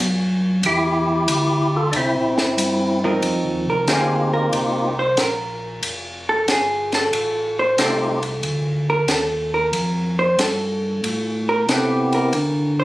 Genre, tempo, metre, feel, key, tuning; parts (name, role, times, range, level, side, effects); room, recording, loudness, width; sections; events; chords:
soul jazz organ trio; 92 BPM; 4/4; swing 68% on 8ths; F mixolydian from 3.2 s; A4 = 440 Hz
mellow tonewheel organ; bass; 0.0-12.8 s; F1 to D3; -24 LUFS; equal; slow rotary speaker
compact cocktail drum kit; drums; 0.6-12.5 s; hi-hat, ride cymbal, snare drum; -25 LUFS; equal
percussive tonewheel organ; melody; 0.7-12.3 s; A3 to A4; -20 LUFS; equal; slow rotary speaker, overdrive, plate reverb
vintage hollow-body jazz guitar; accompaniment; 3.0-12.8 s; F3 to C5; -21 LUFS; right 1 dB
moderate studio reverb, RT60 0.8 s; recorded on a phone in the room, studio reverb, compression; -17 LUFS; side -17 dB against mid
0.0-3.2 A section; 3.2-12.8 B section
hollow-body jazz guitar solo 3.2-12.8
0.0 N.C.; 0.6 Dsus24; 1.9 C7; 3.2 F7sus4; 5.8 F7; 8.4 Bbmaj7; 11.0 Am7; 12.3 D5